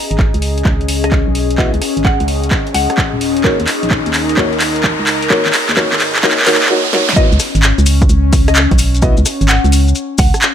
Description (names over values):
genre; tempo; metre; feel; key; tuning
UK garage, two-step garage; 129 BPM; 4/4; swing 67% on 16ths; unclear; A4 = 440 Hz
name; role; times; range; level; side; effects
riser; sound effects; 1.2-7.2 s; none; -21 LUFS; right 1 dB; none
airy breathy pad; texture; 0.0-10.5 s; C#4 to A#5; -20 LUFS; left 4 dB; chorus, sidechain pumping
organ-like FM bass; bass; 0.1-10.3 s; D#1 to D#2; -15 LUFS; right 1 dB; none
punchy analog drum machine; drums; 0.1-10.5 s; handclaps, hi-hat, rim click, snare drum; -16 LUFS; equal; none
electronic kick drum; drums; 0.2-10.3 s; none; -14 LUFS; right 1 dB; none
mallet-like synth pluck; melody; 1.0-10.5 s; A#4 to F#5; -21 LUFS; left 1 dB; lush chorus, ping-pong delay
dark concert grand piano; stabs; 1.6-9.1 s; A#3 to D#5; -19 LUFS; left 1 dB; low-pass filter, tape echo
maracas; percussion; 7.2-10.5 s; none; -23 LUFS; left 5 dB; none
room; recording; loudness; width
light reverb, digital ambience; high-pass filter; -10 LUFS; side -9 dB against mid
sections
0.0-7.2 A section; 7.2-10.5 B section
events
build-up 0.0-7.2; drum fill 0.0-6.7, 6.9; filter sweep 0.0-7.2; riser 1.2-7.2; drop 7.2-10.5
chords
0.0 C#9sus4; 3.2 D#7(no3); 5.3 G#sus2; 7.2 C#7(no3)